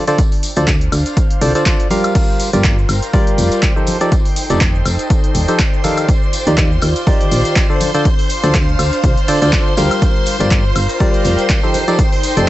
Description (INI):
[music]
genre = piano house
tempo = 122 BPM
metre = 4/4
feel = swing 56% on 16ths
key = G minor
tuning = A4 = 439 Hz
[part]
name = percussive organ stab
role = riff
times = 0.0-12.5 s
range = D3 to F5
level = -18 LUFS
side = equal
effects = chorus, vintage 12-bit sampler grit, sidechain pumping, tape echo
[part]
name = airy breathy pad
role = texture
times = 0.0-12.5 s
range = D4 to G5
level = -25 LUFS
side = equal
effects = chorus, sidechain pumping
[part]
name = punchy analog drum machine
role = drums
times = 0.1-12.5 s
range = crash cymbal, handclaps, hi-hat, shaker, woodblock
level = -22 LUFS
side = equal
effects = overdrive
[part]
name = tambourine and congas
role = percussion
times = 0.1-12.5 s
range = none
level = -27 LUFS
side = left 3 dB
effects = none
[part]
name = electronic kick drum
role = drums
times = 0.2-12.1 s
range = none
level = -15 LUFS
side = equal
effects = overdrive
[part]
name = solid FM bass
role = bass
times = 0.6-12.5 s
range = Eb1 to Eb2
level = -16 LUFS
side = equal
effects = tube saturation, sidechain pumping
[part]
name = string machine, violins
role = sustained chords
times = 2.2-12.5 s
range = C5 to C6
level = -23 LUFS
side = equal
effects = ensemble chorus, sidechain pumping
[sound]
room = little or no reverb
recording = nothing above 8.0 kHz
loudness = -12 LUFS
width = side -15 dB against mid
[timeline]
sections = 0.0-12.5 A section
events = fade-in on analog synth pad 0.0-12.5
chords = 0.0 Dm7; 2.2 Gm7; 3.9 F13; 6.1 Ebmaj9; 7.8 Dm7; 10.0 Gm7; 11.7 F13